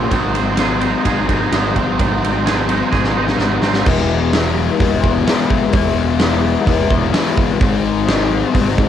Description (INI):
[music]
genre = rock, shoegaze and dream pop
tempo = 128 BPM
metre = 4/4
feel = straight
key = unclear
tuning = A4 = 440 Hz
[part]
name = twangy electric guitar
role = arpeggios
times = 0.0-3.9 s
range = F3 to Ab4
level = -23 LUFS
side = right 11 dB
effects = ensemble chorus, tape echo
[part]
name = raw garage guitar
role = riff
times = 0.0-8.9 s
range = Ab2 to E4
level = -17 LUFS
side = left 7 dB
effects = overdrive, wide subtle chorus
[part]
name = twangy electric guitar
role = riff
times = 0.0-3.9 s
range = Bb2 to C5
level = -23 LUFS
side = right 9 dB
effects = reverse reverb
[part]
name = growling picked electric bass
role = bass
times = 0.0-8.9 s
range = E1 to Ab1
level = -21 LUFS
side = right 2 dB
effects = overdrive
[part]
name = huge arena drum kit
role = drums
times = 0.1-8.9 s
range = crash cymbal, hi-hat, kick drum, ride cymbal, snare drum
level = -18 LUFS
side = right 1 dB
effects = cassette tape
[sound]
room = light reverb, small room ambience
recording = home recording on cassette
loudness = -13 LUFS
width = side -10 dB against mid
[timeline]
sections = 0.0-3.9 A section; 3.9-8.9 B section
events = drum fill 2.9-3.9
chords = 0.1 Ab7; 3.9 E; 7.6 Ab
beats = | 0.12 0.59 1.06 1.52 | 1.99 2.46 2.93 3.40 | 3.87 4.34 4.80 5.27 | 5.74 6.21 6.67 7.14 | 7.61 8.08 8.54